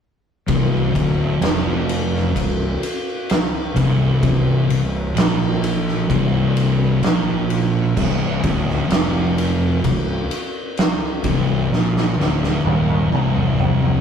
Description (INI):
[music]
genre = stoner and doom metal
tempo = 64 BPM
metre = 4/4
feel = straight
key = C minor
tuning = A4 = 440 Hz
[part]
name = thick fuzz guitar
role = riff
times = 0.5-14.0 s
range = C2 to Bb2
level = -21 LUFS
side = left 6 dB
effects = distortion
[part]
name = thick fuzz guitar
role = riff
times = 0.5-14.0 s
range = C2 to Bb2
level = -23 LUFS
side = right 6 dB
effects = distortion
[part]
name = fuzz fingered electric bass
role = bass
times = 0.5-14.0 s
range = C1 to Bb1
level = -24 LUFS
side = right 1 dB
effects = overdrive
[part]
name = oversized low-tuned drum kit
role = drums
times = 0.5-14.0 s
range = crash cymbal, kick drum, ride cymbal, snare drum, toms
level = -21 LUFS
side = equal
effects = none
[sound]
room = light reverb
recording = rough rehearsal-room recording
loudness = -16 LUFS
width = side -7 dB against mid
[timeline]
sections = 0.5-14.0 A section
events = drum fill 11.7-14.0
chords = none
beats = | 0.48 1.42 2.35 3.29 | 4.22 5.16 6.10 7.04 | 7.97 8.91 9.84 10.78 | 11.72 12.65 13.59